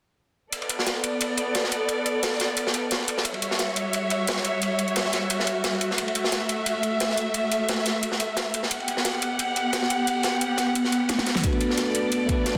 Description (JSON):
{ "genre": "liquid drum and bass", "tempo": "176 BPM", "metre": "4/4", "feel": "straight", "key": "unclear", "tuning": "A4 = 440 Hz", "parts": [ { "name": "warm symphonic string section", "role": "sustained chords", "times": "0.5-12.6 s", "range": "G3 to F#5", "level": "-28 LUFS", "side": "equal", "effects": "sidechain pumping, low-pass filter" }, { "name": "crunchy breakbeat drum kit", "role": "drums", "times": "0.5-12.6 s", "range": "ride cymbal, snare drum", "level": "-30 LUFS", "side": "equal", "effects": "high-pass filter on cymbals, studio reverb, high-pass filter on snare, high-pass filter on room" }, { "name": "pop drum kit", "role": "drums", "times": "0.5-12.5 s", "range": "hi-hat, snare drum, toms", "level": "-31 LUFS", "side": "equal", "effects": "studio reverb" }, { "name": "bell-like tine electric piano", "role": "accompaniment", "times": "11.4-12.6 s", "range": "A3 to B4", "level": "-28 LUFS", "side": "equal", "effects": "phaser, delay" }, { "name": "electronic kick drum", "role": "drums", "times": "11.4-12.6 s", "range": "none", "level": "-28 LUFS", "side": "equal", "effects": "studio reverb" } ], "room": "wet lush hall reverb, RT60 2.2 s", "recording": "dense, heavily limited modern master", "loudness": "-25 LUFS", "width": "mono", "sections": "0.5-12.6 A section", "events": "drum fill 11.1-11.4", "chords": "0.5 Bm7; 3.3 Em69; 6.0 F#m7; 8.7 Gmaj7; 11.4 Bm7", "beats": "| 0.53 0.87 1.21 1.55 | 1.89 2.23 2.57 2.91 | 3.25 3.60 3.94 4.28 | 4.62 4.96 5.30 5.64 | 5.98 6.32 6.66 7.00 | 7.35 7.69 8.03 8.37 | 8.71 9.05 9.39 9.73 | 10.07 10.41 10.76 11.10 | 11.44 11.78 12.12 12.46" }